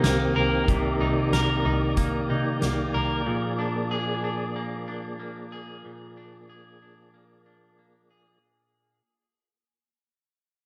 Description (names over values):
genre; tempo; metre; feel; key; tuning
dream pop; 93 BPM; 4/4; straight; unclear; A4 = 440 Hz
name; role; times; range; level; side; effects
mellow tonewheel organ; sustained chords; 0.0-8.4 s; Eb3 to D5; -32 LUFS; equal; chorus vibrato, fast rotary speaker
electric guitar at the edge of break-up; arpeggios; 0.0-9.0 s; Bb2 to Bb4; -30 LUFS; equal; lush chorus, diffuse ambient delay
warm double bass; bass; 0.0-3.2 s; C2 to C3; -31 LUFS; equal; none
soft-mallet drum kit; drums; 0.0-2.8 s; hi-hat, kick drum, snare drum; -31 LUFS; equal; none
room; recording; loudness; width
moderate plate reverb, RT60 2.6 s; dreamy mix soaked in reverb; -26 LUFS; mono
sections
0.0-8.4 A section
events
fade-out 0.0-8.4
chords
0.0 Cm7; 3.3 Bb7